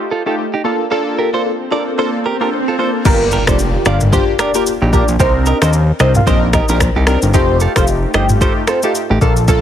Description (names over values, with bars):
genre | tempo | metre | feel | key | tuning
afrobeats | 112 BPM | 4/4 | swing 58% on 16ths | unclear | A4 = 439 Hz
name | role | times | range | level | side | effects
warm analog keys | accompaniment | 0.0-9.6 s | A3 to Bb4 | -18 LUFS | left 1 dB | chorus, phaser, low-pass filter
direct-recorded clean electric guitar | riff | 0.1-9.6 s | D4 to Eb5 | -21 LUFS | right 6 dB | low-pass filter, ping-pong delay
swell and impact | sound effects | 1.4-5.2 s | none | -23 LUFS | right 1 dB | none
warm velvety synth lead | melody | 3.1-9.6 s | A4 to G5 | -20 LUFS | equal | chorus, tremolo, ping-pong delay
fat analog bass | bass | 3.1-9.6 s | F1 to Eb2 | -14 LUFS | left 1 dB | none
afro-pop drum kit | drums | 3.1-9.6 s | crash cymbal, finger snaps, kick drum, rim click, shaker, toms | -16 LUFS | left 1 dB | none
room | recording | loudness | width
little or no reverb | heavily compressed radio sound, multiband compression | -12 LUFS | side -10 dB against mid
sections
0.0-3.1 A section; 3.1-9.6 B section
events
swell 1.4-3.1; impact 3.1-5.2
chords
0.0 F9; 0.6 Bbmaj7; 3.1 Gm7; 5.2 Cm9; 7.3 F9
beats
0.37 | 0.91 1.45 1.98 2.52 | 3.05 3.59 4.12 4.66 | 5.20 5.73 6.27 6.80 | 7.34 7.87 8.41 8.95 | 9.48